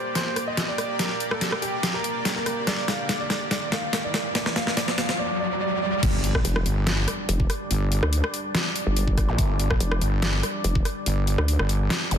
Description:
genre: heavy wobble dubstep.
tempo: 143 BPM.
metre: 4/4.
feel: half-time.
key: G minor.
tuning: A4 = 440 Hz.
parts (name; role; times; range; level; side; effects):
warm concert grand piano; melody; 0.0-6.0 s; G4 to F5; -30 LUFS; right 1 dB; ping-pong delay.
supersaw pad; sustained chords; 0.0-12.2 s; G3 to D5; -32 LUFS; equal; sidechain pumping, low-pass filter.
riser, impact and zap; sound effects; 1.7-9.4, 12.1-12.2 s; none; -32 LUFS; equal; none.
dubstep drum kit; drums; 0.2-12.2 s; crash cymbal, hi-hat, rim click, snare drum; -26 LUFS; equal; overdrive.
wobble bass; bass; 6.0-12.2 s; F1 to Bb1; -23 LUFS; equal; chorus, overdrive.
electronic kick drum; drums; 6.0-10.8 s; none; -24 LUFS; equal; overdrive.
vowel-sweep wobble bass; bass; 6.4-11.6 s; F1 to D2; -23 LUFS; equal; chorus, overdrive.
room: light reverb, digital ambience.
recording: dense, heavily limited modern master.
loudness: -22 LUFS.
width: side -8 dB against mid.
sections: 0.0-6.0 A section; 6.0-12.2 B section.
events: build-up 0.0-6.0; drum fill 0.0-5.2; riser 1.7-6.0; drop 6.0-12.2; impact 6.0-7.7.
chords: 0.0 Gm; 6.0 G5.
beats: 0.15 0.57 | 0.99 1.41 1.83 2.25 | 2.67 3.09 3.51 3.93 | 4.35 4.77 5.19 5.61 | 6.03 6.45 6.87 7.29 | 7.71 8.13 8.55 8.96 | 9.38 9.80 10.22 10.64 | 11.06 11.48 11.90.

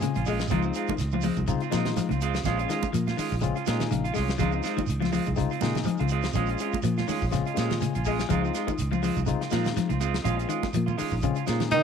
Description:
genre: afrobeat.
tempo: 123 BPM.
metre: 4/4.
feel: swing 55% on 16ths.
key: Bb minor.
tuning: A4 = 439 Hz.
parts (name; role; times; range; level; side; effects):
barky tine electric piano; accompaniment; 0.0-11.8 s; Ab3 to Ab5; -33 LUFS; left 11 dB; overdrive.
semi-hollow electric guitar; arpeggios; 0.0-11.8 s; Db3 to Ab3; -30 LUFS; left 8 dB; none.
fingered electric bass; bass; 0.0-11.8 s; Bb1 to Bb2; -29 LUFS; right 1 dB; none.
damped 70s drum kit; drums; 0.0-11.8 s; hi-hat, kick drum, snare drum; -35 LUFS; left 3 dB; none.
congas; percussion; 0.0-11.8 s; none; -34 LUFS; right 11 dB; none.
shekere; percussion; 0.0-11.8 s; none; -36 LUFS; right 8 dB; none.
clean electric guitar; stabs; 0.2-11.6 s; Ab3 to F4; -31 LUFS; right 11 dB; none.
clear tenor saxophone; melody; 11.7-11.8 s; Eb4; -20 LUFS; left 2 dB; none.
breathy hollow bansuri; second line; 11.7-11.8 s; Eb5; -28 LUFS; right 14 dB; none.
warm trombone section; second line; 11.7-11.8 s; Eb3; -26 LUFS; right 15 dB; none.
room: moderate spring reverb, RT60 1.2 s, small room reverb.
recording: 1960s-style stereo with parts hard left and right.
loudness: -24 LUFS.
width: side -7 dB against mid.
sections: 0.0-11.8 A section.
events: tine electric piano fill 0.0-0.5, 3.4-4.4, 6.8-8.3.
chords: 0.0 Bbm7; 0.5 Dbmaj7; 2.5 Bbm7; 4.4 Dbmaj7; 6.4 Bbm7; 8.3 Dbmaj7; 10.3 Bbm7.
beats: 0.03 | 0.51 1.00 1.48 1.97 | 2.46 2.94 3.43 3.92 | 4.40 4.89 5.38 5.87 | 6.35 6.84 7.33 7.82 | 8.30 8.79 9.28 9.77 | 10.26 10.74 11.23 11.72.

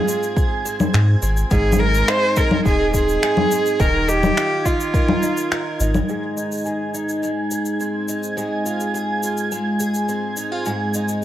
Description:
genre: folktronica.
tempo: 105 BPM.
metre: 4/4.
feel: straight.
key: Ab major.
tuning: A4 = 440 Hz.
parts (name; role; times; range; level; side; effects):
clear cello; melody; 0.0-5.8 s; F4 to C5; -20 LUFS; right 1 dB; digital delay.
picked twelve-string acoustic guitar; arpeggios; 0.0-11.2 s; Ab2 to Bb4; -23 LUFS; equal; low-pass filter, digital delay.
flickering grainy texture; texture; 0.0-11.2 s; Ab6; -31 LUFS; right 3 dB; built-in reverb.
electronic cabasa, congas and finger snaps; drums; 0.1-11.2 s; none; -23 LUFS; left 2 dB; none.
electronic kick drum; drums; 0.4-5.1 s; none; -20 LUFS; equal; none.
warm sub bass; bass; 0.9-6.0 s; Eb1 to Ab2; -19 LUFS; equal; none.
room: light reverb, digital ambience.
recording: none.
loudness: -17 LUFS.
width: side -12 dB against mid.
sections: 0.0-6.1 A section; 6.1-11.2 B section.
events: filter sweep on twelve-string acoustic guitar 6.1-11.2.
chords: 0.0 Fm/Ab; 1.5 Ab; 3.8 Ebsus2; 6.1 Ab; 8.4 Fm7/Ab; 10.7 Ab.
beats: 0.37 0.94 | 1.51 2.08 2.65 3.23 | 3.80 4.37 4.94 5.51 | 6.08 6.66 7.23 7.80 | 8.37 8.94 9.51 10.08 | 10.65 11.23.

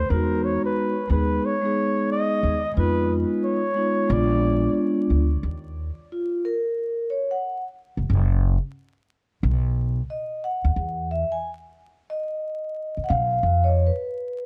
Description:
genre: hip hop.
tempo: 90 BPM.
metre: 4/4.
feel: swing 63% on 16ths.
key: unclear.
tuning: A4 = 439 Hz.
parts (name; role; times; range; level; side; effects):
mellow flugelhorn; melody; 0.0-4.8 s; Bb4 to D#5; -28 LUFS; equal; tape echo.
upright bass; bass; 0.0-13.9 s; F1 to F2; -25 LUFS; equal; none.
vibraphone with soft mallets; accompaniment; 0.1-14.5 s; G#3 to Ab5; -27 LUFS; equal; none.
room: moderate studio reverb, RT60 0.6 s.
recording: dark, warm production, vinyl crackle.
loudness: -24 LUFS.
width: mono.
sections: 0.0-5.4 A section; 5.4-14.5 B section.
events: vibraphone solo 5.4-14.5.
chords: 0.1 Emaj9; 2.8 Fm7b5; 4.1 Bb7b9; 5.4 Ebsus2; 8.1 N.C.; 9.4 B; 10.8 E5; 13.4 Db7/F.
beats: | 0.10 0.76 1.43 2.10 | 2.76 3.43 4.10 4.76 | 5.43 6.10 6.76 7.43 | 8.10 8.76 9.43 10.10 | 10.76 11.43 12.10 12.76 | 13.43 14.10.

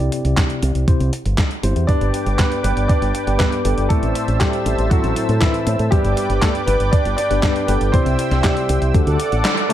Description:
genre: italo disco.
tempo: 119 BPM.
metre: 4/4.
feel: straight.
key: G major.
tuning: A4 = 440 Hz.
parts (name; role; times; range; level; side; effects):
tine electric piano; stabs; 0.0-9.7 s; G2 to E5; -24 LUFS; left 2 dB; medium stereo tremolo, low-pass filter, digital delay.
fingered electric bass with an envelope filter; bass; 0.0-9.4 s; G1 to A2; -19 LUFS; equal; none.
clean 12-bit digital drum machine; drums; 0.0-9.7 s; handclaps, hi-hat, snare drum; -24 LUFS; equal; none.
electronic kick drum; drums; 0.4-9.0 s; none; -17 LUFS; equal; none.
clear baby grand piano; melody; 1.9-9.7 s; E3 to D5; -23 LUFS; equal; tape echo.
warm analog pad; sustained chords; 1.9-9.7 s; A4 to E6; -24 LUFS; right 1 dB; chorus.
room: light reverb, digital ambience.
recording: none.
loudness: -15 LUFS.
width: side -12 dB against mid.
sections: 0.0-9.7 A section.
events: band accent 9.4.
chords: 0.0 C; 1.9 G; 3.9 Am; 5.9 G; 7.9 C; 8.9 D.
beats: 0.37 0.88 1.38 | 1.89 2.39 2.90 3.40 | 3.90 4.41 4.91 5.42 | 5.92 6.42 6.93 7.43 | 7.94 8.44 8.95 9.45.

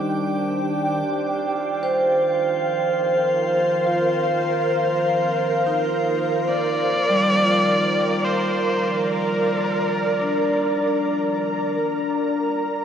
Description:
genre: ambient.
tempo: free time.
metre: none.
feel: none.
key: unclear.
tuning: A4 = 438 Hz.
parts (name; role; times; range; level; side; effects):
ethereal airy pad; sustained chords; 0.0-12.8 s; G4 to Bb5; -23 LUFS; right 1 dB; ensemble chorus, built-in reverb.
vibraphone with medium mallets; arpeggios; 0.0-12.8 s; G3 to C5; -24 LUFS; equal; analog delay.
analog drone; drone; 0.0-11.9 s; Eb3 to G3; -33 LUFS; equal; chorus.
drifting glass-harmonics texture; texture; 0.0-12.8 s; D4 to D6; -30 LUFS; right 1 dB; chorus, built-in reverb.
dark electric violin; melody; 6.5-10.9 s; Bb4 to D5; -23 LUFS; equal; analog delay.
room: wet huge ambient reverb, RT60 7.0 s.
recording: dreamy mix soaked in reverb.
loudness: -19 LUFS.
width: side -8 dB against mid.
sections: 0.0-1.1 A section; 1.1-11.8 B section; 11.8-12.8 C section.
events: fade-in on synth drone 1.1-11.8; fade-out on synth texture 1.1-11.8.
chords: 0.0 Cm; 1.1 Bbsus24/Eb; 6.5 Gm; 11.8 Bb.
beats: free time.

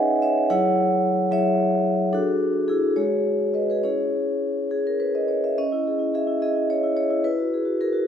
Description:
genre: classical, contemporary piece for solo vibraphone.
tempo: 72 BPM (dotted quarters).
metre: 6/8.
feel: rubato.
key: C# minor.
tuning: A4 = 441 Hz.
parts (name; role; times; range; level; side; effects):
vibraphone with medium mallets; solo; 0.0-8.1 s; F#3 to G#5; -20 LUFS; equal; none.
room: moderate recital hall reverb, RT60 1.5 s.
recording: dark, warm production.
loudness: -20 LUFS.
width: side -8 dB against mid.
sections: 0.0-5.6 A section; 5.6-8.1 B section.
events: none.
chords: 0.5 F#sus2; 2.1 D; 3.0 G#7sus4; 3.8 C#m; 7.2 Eadd9.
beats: | 0.49 1.31 | 2.13 2.97 | 3.83 4.70 | 5.57 6.41 | 7.24 8.06.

